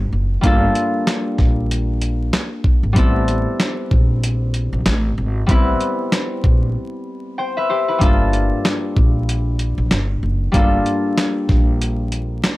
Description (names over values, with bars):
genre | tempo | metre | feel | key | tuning
hip hop, boom-bap hip-hop | 95 BPM | 4/4 | swing 57% on 16ths | G dorian | A4 = 440 Hz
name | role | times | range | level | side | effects
concert harp | accompaniment | 0.0-12.6 s | G3 to G5 | -21 LUFS | left 1 dB | cassette tape, high-pass filter, low-pass filter
upright bass | bass | 0.0-12.4 s | F#1 to Bb1 | -20 LUFS | equal | none
dusty soul sampler-style drum kit | drums | 0.4-12.6 s | handclaps, hi-hat, kick drum, snare drum | -16 LUFS | equal | none
room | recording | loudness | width
little or no reverb | dry, gritty hardware recording, vinyl crackle | -15 LUFS | side -18 dB against mid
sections
0.0-12.6 A section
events
break 6.8-8.0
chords
0.0 Gm9; 3.0 Am9; 8.0 Gm9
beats
| 0.43 1.07 1.70 2.33 | 2.96 3.59 4.22 4.86 | 5.49 6.12 6.75 7.38 | 8.01 8.65 9.28 9.91 | 10.54 11.17 11.80 12.44